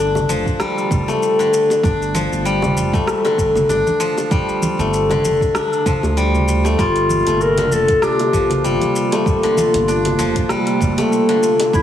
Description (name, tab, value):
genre	organic downtempo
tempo	97 BPM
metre	4/4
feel	swing 56% on 16ths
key	G minor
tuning	A4 = 441 Hz
part	steel-string zither	arpeggios	0.0-11.8 s	D3 to D4	-17 LUFS	left 2 dB	tape echo
part	round analog bass	bass	0.0-11.8 s	F1 to D2	-21 LUFS	right 1 dB	sidechain pumping
part	deep house drum kit	drums	0.2-11.8 s	hi-hat, rim click, shaker	-28 LUFS	left 1 dB	none
part	congas and bongos	percussion	0.2-11.7 s	none	-25 LUFS	right 1 dB	none
part	electronic kick drum	drums	0.5-11.8 s	none	-20 LUFS	right 1 dB	none
part	warm clarinet	melody	6.8-11.8 s	E4 to Bb4	-19 LUFS	left 2 dB	tape echo
part	warbly tape-like pad	sustained chords	7.2-11.8 s	C3 to G4	-21 LUFS	right 2 dB	chorus, built-in reverb, vintage 12-bit sampler grit, sidechain pumping
room	moderate echo chamber reverb, RT60 2.1 s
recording	heavily compressed radio sound, multiband compression, small room ambience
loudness	-14 LUFS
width	side -10 dB against mid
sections	0.0-11.8 A section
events	none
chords	0.0 G7sus2; 6.8 Gm11